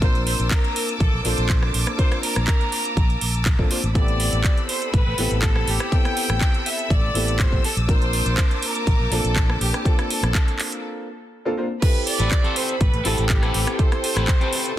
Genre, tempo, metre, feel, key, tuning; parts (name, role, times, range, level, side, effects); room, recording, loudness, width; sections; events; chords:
nu-disco, nu disco; 122 BPM; 4/4; straight; A phrygian; A4 = 440 Hz
rich chamber violin section; melody; 0.0-14.8 s; G4 to G5; -28 LUFS; right 1 dB; tape echo
dark grand piano; accompaniment; 0.0-14.8 s; Bb3 to C5; -29 LUFS; equal; sidechain pumping
clear studio string section; sustained chords; 0.0-14.8 s; Bb3 to E6; -31 LUFS; equal; sidechain pumping
fingered electric bass; bass; 0.0-14.3 s; A1 to Bb1; -23 LUFS; equal
electronic kick drum; drums; 0.0-14.4 s; -19 LUFS; equal
house drum kit; drums; 0.0-14.8 s; crash cymbal, handclaps, hi-hat, rim click; -26 LUFS; right 2 dB; soft clipping on snare
electric guitar at the edge of break-up; riff; 12.2-14.7 s; C4 to C5; -27 LUFS; left 3 dB; lush chorus
little or no reverb; dense, heavily limited modern master; -18 LUFS; side -13 dB against mid
0.0-11.8 A section; 11.8-14.8 B section
break 10.8-11.8; drop 11.8-14.8
0.0 Bbmaj9; 4.0 Am9; 7.6 Bbmaj9; 11.8 Am9